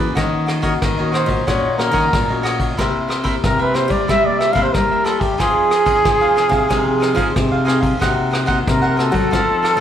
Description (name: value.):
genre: samba and choro.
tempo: 92 BPM.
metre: 4/4.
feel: straight.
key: unclear.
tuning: A4 = 441 Hz.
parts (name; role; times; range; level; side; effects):
cavaquinho; accompaniment; 0.0-9.8 s; Eb4 to Gb5; -23 LUFS; right 1 dB; slapback echo.
nylon-string guitar; accompaniment; 0.0-9.8 s; Bb2 to A4; -26 LUFS; left 6 dB; slapback echo.
nylon-string guitar; bass; 0.0-9.8 s; Bb2 to G3; -20 LUFS; equal; none.
vintage brush drum kit; drums; 0.2-9.8 s; kick drum, ride cymbal, rim click; -22 LUFS; equal; none.
dark trumpet; melody; 0.8-9.8 s; G4 to F5; -17 LUFS; right 1 dB; slapback echo.
room: light reverb.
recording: live gig heard through the venue's PA, club reverb.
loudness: -14 LUFS.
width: side -9 dB against mid.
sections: 0.0-9.8 A section.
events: trumpet solo 0.0-9.8.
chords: 0.2 Ebm7; 2.8 C7; 5.4 Fm7; 8.0 Cm7b5.